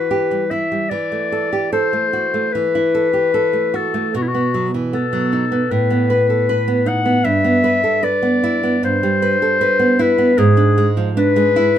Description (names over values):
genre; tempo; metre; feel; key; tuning
romantic duo for clarinet and classical guitar; 76 BPM; 4/4; rubato; E minor; A4 = 440 Hz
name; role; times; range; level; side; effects
clear clarinet; melody; 0.0-11.8 s; E4 to F#5; -17 LUFS; left 5 dB; none
nylon-string guitar; accompaniment; 0.0-11.8 s; G2 to B4; -17 LUFS; right 3 dB; none
room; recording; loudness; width
moderate studio reverb, RT60 0.6 s; minimal, uncompressed stereo recording; -14 LUFS; side -10 dB against mid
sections
0.0-11.8 A section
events
none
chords
0.0 Em; 0.9 F#dim/E; 4.1 B; 5.7 B7/A; 7.3 Em/G; 10.4 E7/G#